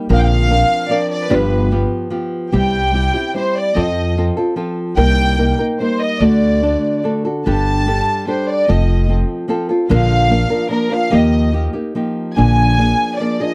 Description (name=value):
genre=mexican folk, mariachi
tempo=146 BPM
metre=3/4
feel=rubato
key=G minor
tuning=A4 = 440 Hz
part: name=nylon-string guitar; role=accompaniment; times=0.0-13.5 s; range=G2 to Bb4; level=-20 LUFS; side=equal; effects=none
part: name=concert harp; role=arpeggios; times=0.0-0.6 s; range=none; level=barely audible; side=none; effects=none
part: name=rich studio violin section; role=melody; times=0.1-13.5 s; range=Bb4 to A5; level=-21 LUFS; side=equal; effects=none
part: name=upright bass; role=bass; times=0.1-12.9 s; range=F1 to F2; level=-18 LUFS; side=equal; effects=none
room=little or no reverb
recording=dry, close 1970s-style studio recording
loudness=-16 LUFS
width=mono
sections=0.0-13.5 A section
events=none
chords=0.1 Bbadd9; 1.3 G7; 2.5 C; 3.8 F; 5.0 Cm7; 6.2 D; 7.5 Gsus2; 8.7 F; 9.9 Bb; 11.1 Ebadd9; 12.4 Bb7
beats=| 0.10 0.50 0.90 | 1.31 1.71 2.12 | 2.54 2.95 3.36 | 3.77 4.17 4.58 | 4.98 5.39 5.80 | 6.21 6.62 7.04 | 7.46 7.87 8.28 | 8.69 9.10 9.50 | 9.90 10.31 10.71 | 11.12 11.54 11.96 | 12.38 12.79 13.20